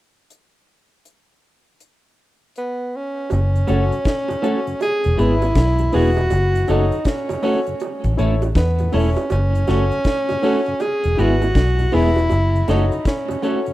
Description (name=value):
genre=roots reggae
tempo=80 BPM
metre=4/4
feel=swing 64% on 16ths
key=F# dorian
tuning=A4 = 440 Hz
part: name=deep reggae drum kit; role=drums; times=0.3-13.7 s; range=hi-hat, kick drum, snare drum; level=-20 LUFS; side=equal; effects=none
part: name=breathy tenor saxophone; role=melody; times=2.6-13.7 s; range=B3 to G#4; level=-22 LUFS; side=equal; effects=tape echo
part: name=vintage muted fingered electric bass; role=bass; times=3.3-12.9 s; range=E1 to E2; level=-18 LUFS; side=equal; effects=none
part: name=bongos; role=percussion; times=3.3-13.6 s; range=none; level=-29 LUFS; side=right 6 dB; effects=none
part: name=mellow tonewheel organ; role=accompaniment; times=3.5-13.7 s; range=E2 to F#4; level=-30 LUFS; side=left 1 dB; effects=none
part: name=clean electric guitar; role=accompaniment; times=3.7-13.6 s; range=G#3 to A4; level=-25 LUFS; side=right 2 dB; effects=tape echo
part: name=warm concert grand piano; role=stabs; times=3.7-13.7 s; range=E4 to C#5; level=-26 LUFS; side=left 5 dB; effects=none
room=small room ambience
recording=rough home demo mix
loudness=-16 LUFS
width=side -15 dB against mid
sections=0.3-3.3 A section; 3.3-13.7 B section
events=none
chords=0.3 N.C.; 3.3 F#m; 4.8 E; 6.3 F#m; 7.8 A; 9.3 F#m; 10.8 E; 12.3 F#m